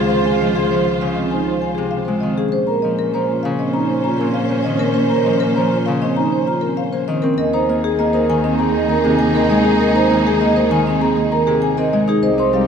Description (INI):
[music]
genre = classical, minimalist pattern music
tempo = 99 BPM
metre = 4/4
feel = straight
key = unclear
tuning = A4 = 442 Hz
[part]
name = marimba with medium mallets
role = melody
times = 0.0-12.7 s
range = Ab4 to C6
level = -21 LUFS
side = left 9 dB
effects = none
[part]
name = clear clarinet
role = second line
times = 0.0-12.7 s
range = Db4 to F4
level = -26 LUFS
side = right 3 dB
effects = none
[part]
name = Celtic harp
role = accompaniment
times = 0.0-12.7 s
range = Bb2 to Eb4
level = -21 LUFS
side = left 1 dB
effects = none
[part]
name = warm symphonic string section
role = sustained chords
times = 0.0-12.7 s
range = Db4 to C5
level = -25 LUFS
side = left 1 dB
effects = none
[part]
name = vibraphone with medium mallets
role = arpeggios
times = 0.0-12.7 s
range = C4 to Eb5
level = -20 LUFS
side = right 7 dB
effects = none
[part]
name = warm cello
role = bass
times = 0.0-12.7 s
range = C2 to Bb2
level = -23 LUFS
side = right 2 dB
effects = none
[sound]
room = moderate recital hall reverb, RT60 1.4 s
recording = none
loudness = -15 LUFS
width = side -7 dB against mid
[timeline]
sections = 0.0-12.7 A section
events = none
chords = 0.0 Dbmaj7; 2.5 Bbmadd9; 7.4 Ebsus4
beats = | 0.11 0.71 1.32 1.93 | 2.53 3.14 3.74 4.35 | 4.96 5.56 6.17 6.77 | 7.38 7.99 8.59 9.20 | 9.80 10.41 11.02 11.62 | 12.23